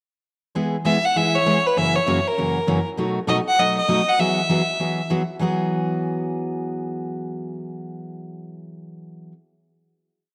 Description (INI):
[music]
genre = country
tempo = 198 BPM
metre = 4/4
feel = swing 62% on 8ths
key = E major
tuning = A4 = 440 Hz
[part]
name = picked steel-string acoustic guitar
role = accompaniment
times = 0.6-9.3 s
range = F#2 to G#4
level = -25 LUFS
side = equal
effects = none
[part]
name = clear fiddle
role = melody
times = 0.9-5.1 s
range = A#4 to F#5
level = -22 LUFS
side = equal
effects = none
[sound]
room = moderate plate reverb, RT60 2.5 s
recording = none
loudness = -21 LUFS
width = mono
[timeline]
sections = 0.6-5.4 A section; 5.4-7.8 final chord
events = none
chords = 0.6 E; 1.8 F#7; 3.0 B7; 4.2 Eadd9